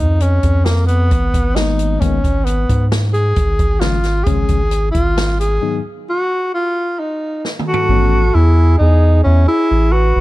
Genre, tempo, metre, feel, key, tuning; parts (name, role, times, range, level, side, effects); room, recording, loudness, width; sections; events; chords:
progressive instrumental, band music in an uneven meter; 132 BPM; 5/4; straight; A4 = 440 Hz
breathy tenor saxophone; melody; 0.0-10.2 s; A#3 to G#4; -18 LUFS; equal
round analog bass; bass; 0.0-10.2 s; G#1 to G#2; -14 LUFS; equal
open jazz drum kit; drums; 0.2-7.8 s; hi-hat, kick drum, snare drum, toms; -20 LUFS; equal
tine electric piano; accompaniment; 1.6-8.2 s; G#2 to D#4; -24 LUFS; left 8 dB
warm flugelhorn; second line; 7.7-10.2 s; E4 to B4; -23 LUFS; right 8 dB
studio ambience; dark, warm production; -12 LUFS; side -17 dB against mid
0.0-7.9 A section; 7.9-10.2 B section
break 5.6-7.9; drum fill 7.4-7.9
0.0 A#m (rootless); 1.1 G#madd9; 3.4 C#/G#; 5.6 B/G#; 7.9 Amaj7